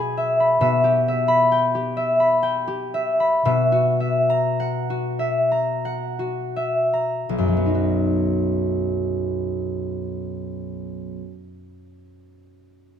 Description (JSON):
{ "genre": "classical, solo harp piece", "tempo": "38-71 BPM", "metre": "3/4", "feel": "rubato", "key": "B major", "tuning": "A4 = 439 Hz", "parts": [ { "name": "concert harp", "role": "solo", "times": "0.0-11.3 s", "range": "B1 to B5", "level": "-19 LUFS", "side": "left 1 dB", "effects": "none" } ], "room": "light reverb", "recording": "close, detailed microphones", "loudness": "-19 LUFS", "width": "side -8 dB against mid", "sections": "0.0-7.3 A section; 7.3-11.2 B section", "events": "slowing down 0.0-7.3", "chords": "0.0 E/B; 0.6 Em/B; 3.4 F#7/B; 7.3 B" }